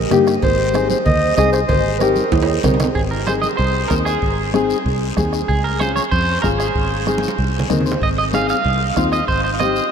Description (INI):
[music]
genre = latin, cumbia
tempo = 190 BPM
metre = 4/4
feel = straight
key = Ab major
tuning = A4 = 438 Hz
[part]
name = warm clarinet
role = melody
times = 0.0-2.6 s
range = Ab4 to Eb5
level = -21 LUFS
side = right 1 dB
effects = none
[part]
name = fingered electric bass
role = bass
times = 0.0-9.8 s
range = Ab1 to G2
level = -22 LUFS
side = equal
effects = none
[part]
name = nylon-string guitar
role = accompaniment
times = 0.1-9.8 s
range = Bb3 to Eb5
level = -20 LUFS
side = left 5 dB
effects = none
[part]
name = bombo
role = percussion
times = 0.1-9.8 s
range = none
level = -25 LUFS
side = right 2 dB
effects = none
[part]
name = congas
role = percussion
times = 0.1-9.8 s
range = none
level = -27 LUFS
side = right 3 dB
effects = none
[part]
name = cowbell and timbales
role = percussion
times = 0.1-2.9 s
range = none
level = -27 LUFS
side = right 8 dB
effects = none
[part]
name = guiro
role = percussion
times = 0.1-9.9 s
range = none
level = -32 LUFS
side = left 9 dB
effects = none
[part]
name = electric guitar at the edge of break-up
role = second line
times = 3.0-9.9 s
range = Ab4 to F5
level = -20 LUFS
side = right 3 dB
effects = none
[sound]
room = wet huge ambient reverb, RT60 7.3 s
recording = in a vast, echoing space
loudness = -15 LUFS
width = side -7 dB against mid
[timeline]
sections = 0.0-3.0 A section; 3.0-9.9 B section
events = drum fill 2.0-3.0, 7.1-8.0; clean electric guitar solo 3.0-9.9; nylon-string guitar fill 7.5-8.0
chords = 0.4 Ab; 5.5 Db; 6.8 Ab